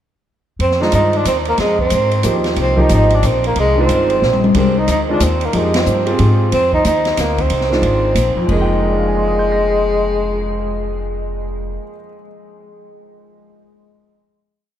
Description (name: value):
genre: modal jazz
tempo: 182 BPM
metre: 3/4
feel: swing 63% on 8ths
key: F dorian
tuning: A4 = 440 Hz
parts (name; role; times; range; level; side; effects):
- breathy tenor saxophone; melody; 0.6-11.2 s; Ab3 to Eb4; -17 LUFS; equal; none
- upright bass; bass; 0.6-11.8 s; F1 to Ab2; -18 LUFS; equal; none
- open jazz drum kit; drums; 0.6-10.4 s; crash cymbal, cymbal swell, hi-hat, kick drum, ride cymbal, snare drum, toms; -22 LUFS; left 2 dB; none
- warm grand piano; accompaniment; 0.8-12.3 s; F2 to Bb6; -21 LUFS; right 1 dB; none
room: wet cathedral reverb, RT60 6.4 s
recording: in a vast, echoing space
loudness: -13 LUFS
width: side -10 dB against mid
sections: 0.6-8.5 A section; 8.5-10.5 final chord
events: drum fill 4.2-4.5; band accent 5.7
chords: 0.6 Fm11